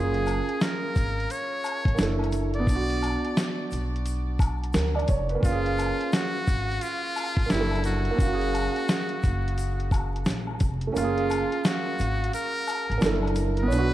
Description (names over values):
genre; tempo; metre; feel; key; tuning
lo-fi hip hop; 87 BPM; 4/4; swing 61% on 16ths; F# major; A4 = 440 Hz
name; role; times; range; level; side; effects
trumpet with metal mute; melody; 0.0-13.9 s; E4 to D5; -31 LUFS; left 1 dB; diffuse ambient delay
felt-muted upright piano; accompaniment; 0.0-13.9 s; A3 to E#5; -29 LUFS; right 3 dB; cassette tape
upright bass; bass; 0.0-13.9 s; E#1 to D2; -28 LUFS; equal; none
dusty soul sampler-style drum kit; drums; 0.1-13.9 s; hi-hat, kick drum, snare drum; -26 LUFS; equal; none
tube shaker and woodblock; percussion; 0.3-13.9 s; none; -38 LUFS; left 5 dB; none
room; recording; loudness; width
moderate plate reverb, RT60 2.0 s, studio reverb; dreamy mix soaked in reverb, vinyl crackle; -23 LUFS; side -14 dB against mid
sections
0.0-10.9 A section; 10.9-13.9 A section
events
kick muted 10.9-13.9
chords
0.0 F#maj9; 2.0 F#7alt; 2.7 Bm; 5.4 F#maj9; 7.5 F#7alt; 8.2 F#maj9; 13.0 F#7alt